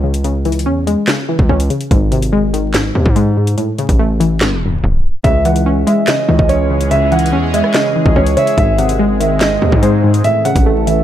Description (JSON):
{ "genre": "hip hop, drill", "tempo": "144 BPM", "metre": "4/4", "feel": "half-time", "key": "C# harmonic minor", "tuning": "A4 = 438 Hz", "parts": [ { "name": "glassy wavetable pluck", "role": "accompaniment", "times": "0.0-11.0 s", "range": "G#2 to C#4", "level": "-16 LUFS", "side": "left 1 dB", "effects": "chorus" }, { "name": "distorted 808-style bass", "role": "bass", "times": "0.0-11.0 s", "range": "G#1 to A2", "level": "-16 LUFS", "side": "equal", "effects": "distortion" }, { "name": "drill drum kit", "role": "drums", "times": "0.1-11.0 s", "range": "handclaps, hi-hat, kick drum, rim click, snare drum", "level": "-16 LUFS", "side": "equal", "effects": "none" }, { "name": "dark grand piano", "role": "melody", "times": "5.2-11.0 s", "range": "B#4 to F#5", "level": "-16 LUFS", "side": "right 2 dB", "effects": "ping-pong delay" }, { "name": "sweeping resonant pad", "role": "sustained chords", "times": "5.2-11.0 s", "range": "D#3 to A4", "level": "-20 LUFS", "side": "right 2 dB", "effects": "chorus" }, { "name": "breathy flute-like synth lead", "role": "second line", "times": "8.4-8.6 s", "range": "E5", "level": "-23 LUFS", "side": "right 1 dB", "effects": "chorus, ping-pong delay" } ], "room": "light reverb", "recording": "vinyl crackle, tape stop", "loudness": "-11 LUFS", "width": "side -11 dB against mid", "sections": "0.0-5.2 A section; 5.2-11.0 B section", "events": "tape stop 4.4-5.2", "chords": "0.0 C#m; 1.9 G#; 3.6 A; 5.2 C#m; 8.6 G#; 10.2 A" }